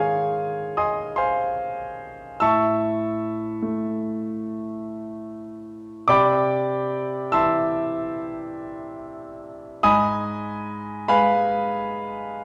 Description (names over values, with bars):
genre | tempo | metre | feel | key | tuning
classical, impressionist solo piano | 48 BPM (dotted quarters) | 9/8 | rubato | unclear | A4 = 440 Hz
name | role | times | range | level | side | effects
clear concert grand piano | solo | 0.0-12.4 s | Ab2 to E6 | -24 LUFS | equal | none
room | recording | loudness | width
wet recital hall reverb, RT60 1.4 s | recorded in a church or concert hall | -23 LUFS | mono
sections
0.0-12.4 A section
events
none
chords
0.0 Ab; 2.4 A; 6.1 Cmaj9; 9.8 Abm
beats
1.20 | 2.41 3.63 4.87 | 6.10 7.34 8.60 | 9.83 11.12